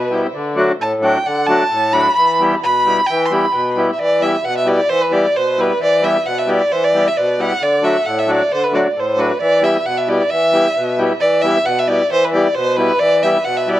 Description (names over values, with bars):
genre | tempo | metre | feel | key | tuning
balkan folk | 133 BPM | 2/4 | swing 56% on 16ths | E minor | A4 = 440 Hz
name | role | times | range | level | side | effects
rich violin | melody | 0.0-13.8 s | B4 to C6 | -15 LUFS | right 1 dB | tape echo
accordion | accompaniment | 0.0-13.8 s | A2 to G4 | -17 LUFS | left 1 dB | none
room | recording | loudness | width
moderate small room reverb, RT60 0.5 s | cassette tape | -13 LUFS | side -13 dB against mid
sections
0.0-4.0 A section; 4.0-11.2 B section; 11.2-13.8 B section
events
violin solo 0.0-4.0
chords
0.4 D; 2.2 Em; 7.6 D; 9.4 Em